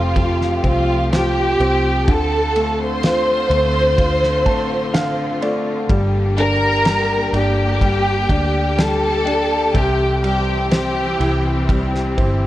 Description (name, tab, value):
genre	pop ballad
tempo	63 BPM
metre	4/4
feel	straight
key	unclear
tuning	A4 = 440 Hz
part	warm studio violin section	melody	0.0-11.7 s	F4 to C6	-19 LUFS	equal	none
part	clear concert grand piano	accompaniment	0.0-12.5 s	C3 to A5	-22 LUFS	equal	none
part	rich studio string section	sustained chords	0.0-12.5 s	D3 to G4	-26 LUFS	left 2 dB	none
part	vintage muted fingered electric bass	bass	0.0-12.5 s	F1 to D2	-21 LUFS	equal	none
part	damped 70s drum kit	drums	0.2-12.4 s	kick drum, ride cymbal, snare drum	-21 LUFS	equal	none
room	light reverb, small room ambience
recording	worn, warbling old tape, cassette tape, warbly pitch drift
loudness	-15 LUFS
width	side -14 dB against mid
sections	0.0-12.5 A section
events	grand piano fill 4.0-5.9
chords	0.0 Fadd9; 2.1 Dm7; 5.9 Gm; 9.7 C